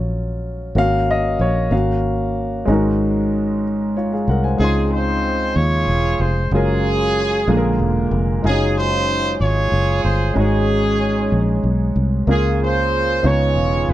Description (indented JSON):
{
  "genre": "slow gospel",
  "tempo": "62 BPM (dotted quarters)",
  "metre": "6/8",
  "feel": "straight",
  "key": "Db major",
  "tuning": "A4 = 440 Hz",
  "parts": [
    { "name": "warm upright piano", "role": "accompaniment", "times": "0.0-13.9 s", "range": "Ab2 to C6", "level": "-20 LUFS", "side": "equal", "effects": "none" },
    { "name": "fingered electric bass", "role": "bass", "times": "0.0-13.9 s", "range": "Fb1 to Eb2", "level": "-20 LUFS", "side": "equal", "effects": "none" },
    { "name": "warm horn section", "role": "melody", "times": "4.6-13.9 s", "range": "C4 to Db5", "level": "-20 LUFS", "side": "right 1 dB", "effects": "none" }
  ],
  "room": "little or no reverb",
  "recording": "dry, close 1970s-style studio recording",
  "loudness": "-16 LUFS",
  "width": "side -14 dB against mid",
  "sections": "0.0-2.7 A section; 2.7-4.6 B section; 4.6-13.9 C section",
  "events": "upright piano solo 0.0-2.7",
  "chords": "0.0 Ebm9 (rootless); 0.8 Ab9sus4; 4.6 Dbmaj9; 6.5 Gbmaj9; 7.5 Bb7; 8.4 Ebm11/Gb; 10.4 Ab7sus4; 12.3 Db6; 13.2 Db13"
}